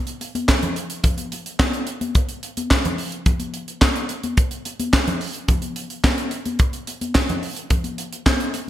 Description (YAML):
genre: funk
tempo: 108 BPM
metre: 4/4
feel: straight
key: none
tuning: none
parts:
  - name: tight funk drum kit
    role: drums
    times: 0.1-8.7 s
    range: handclaps, hi-hat, kick drum, snare drum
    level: -19 LUFS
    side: equal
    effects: gated reverb
  - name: congas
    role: percussion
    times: 0.2-8.7 s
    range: none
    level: -29 LUFS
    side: left 2 dB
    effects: none
room: light reverb, small room ambience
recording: bright 1980s-style digital production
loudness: -19 LUFS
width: side -12 dB against mid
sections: 0.0-8.7 A section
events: none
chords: none